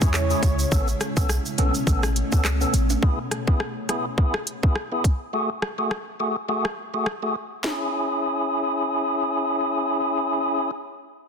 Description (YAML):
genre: dancehall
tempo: 104 BPM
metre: 4/4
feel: swing 56% on 16ths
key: C# minor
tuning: A4 = 441 Hz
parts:
  - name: warm velvety synth lead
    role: second line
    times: 0.0-1.2 s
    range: C#5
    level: -31 LUFS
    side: right 2 dB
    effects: chorus, ping-pong delay
  - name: tonewheel organ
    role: accompaniment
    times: 0.0-10.7 s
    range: A3 to A4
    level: -25 LUFS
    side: equal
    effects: overdrive, fast rotary speaker
  - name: granular cloud pad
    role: sustained chords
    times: 0.0-3.0 s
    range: B2 to E4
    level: -30 LUFS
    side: equal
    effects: built-in reverb, sidechain pumping
  - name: clean 808-style bass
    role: bass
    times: 0.0-3.0 s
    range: A1 to E2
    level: -23 LUFS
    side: equal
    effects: none
  - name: island pop drum kit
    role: drums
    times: 0.0-7.8 s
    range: handclaps, hi-hat, kick drum, rim click, shaker, snare drum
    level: -23 LUFS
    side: equal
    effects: soft clipping on snare
  - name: tube shaker and timbales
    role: percussion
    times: 0.0-3.0 s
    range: none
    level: -35 LUFS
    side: right 8 dB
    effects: none
room: light reverb, digital ambience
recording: dense, heavily limited modern master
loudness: -21 LUFS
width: side -6 dB against mid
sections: 0.0-3.0 A section; 3.0-7.6 B section; 7.6-9.9 C section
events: kick muted 6.5-7.6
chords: 0.0 C#m; 0.7 Aadd9; 3.0 E; 5.3 F#madd9; 7.6 C#m